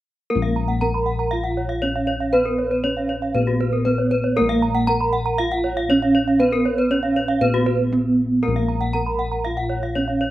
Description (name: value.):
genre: Balinese gamelan.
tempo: 118 BPM.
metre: 4/4.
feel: straight.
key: Bb pelog.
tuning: A4 = 437 Hz.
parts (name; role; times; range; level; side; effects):
gamelan-type bronze metallophone; melody; 0.3-10.3 s; Bb3 to Bb4; -22 LUFS; right 2 dB; none.
gamelan-type bronze metallophone; arpeggios; 0.3-10.3 s; Gb4 to Bb5; -24 LUFS; left 2 dB; slapback echo.
gamelan-type bossed gongs; bass; 0.3-10.3 s; Bb1 to Cb5+35c; -24 LUFS; left 2 dB; none.
gamelan-type bronze metallophone; arpeggios; 0.6-10.2 s; Cb5+35c to Cb6+35c; -28 LUFS; right 6 dB; slapback echo.
room: little or no reverb.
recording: recorded outdoors, with no room sound.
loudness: -18 LUFS.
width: side -14 dB against mid.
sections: 0.3-10.3 A section.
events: none.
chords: none.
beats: | 0.30 0.81 1.32 1.82 | 2.33 2.84 3.35 3.86 | 4.37 4.88 5.38 5.89 | 6.40 6.91 7.42 7.93 | 8.44 8.94 9.45 9.96.